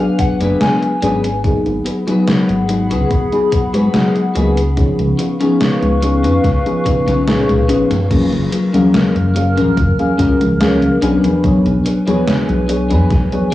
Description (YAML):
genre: vaporwave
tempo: 72 BPM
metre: 4/4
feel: straight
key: F# major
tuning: A4 = 441 Hz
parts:
  - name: mellow FM electric piano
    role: accompaniment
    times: 0.0-13.5 s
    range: E#3 to E#5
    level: -16 LUFS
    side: left 1 dB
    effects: phaser, lush chorus, cassette tape, tape echo
  - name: warbly tape-like pad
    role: sustained chords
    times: 0.0-13.5 s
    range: G#4 to E#6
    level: -23 LUFS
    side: equal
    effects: chorus, built-in reverb, phaser, cassette tape
  - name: electric guitar at the edge of break-up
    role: riff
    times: 0.0-13.5 s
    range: C#4 to G#5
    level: -21 LUFS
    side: left 4 dB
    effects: ensemble chorus, cassette tape, tape echo
  - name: electronic kick drum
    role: drums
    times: 0.2-13.5 s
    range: none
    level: -17 LUFS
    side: equal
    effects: overdrive, cassette tape
  - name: gated 80s digital drum machine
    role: drums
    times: 0.2-13.5 s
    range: congas, crash cymbal, hi-hat, snare drum, toms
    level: -19 LUFS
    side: equal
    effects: gated reverb, gated reverb snare, overdrive, cassette tape
  - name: chorused synth bass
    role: bass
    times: 0.4-13.5 s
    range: F#1 to G#2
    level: -17 LUFS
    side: equal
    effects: none
room: light reverb, digital ambience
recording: home recording on cassette, small room reverb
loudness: -12 LUFS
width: side -15 dB against mid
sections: 0.0-8.1 A section; 8.1-13.5 B section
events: clean electric guitar fill 0.0-1.4; drum fill 6.9-8.1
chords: 0.0 Bm6; 1.4 G#m7; 4.8 C#7; 8.1 F#maj7; 11.0 Bm6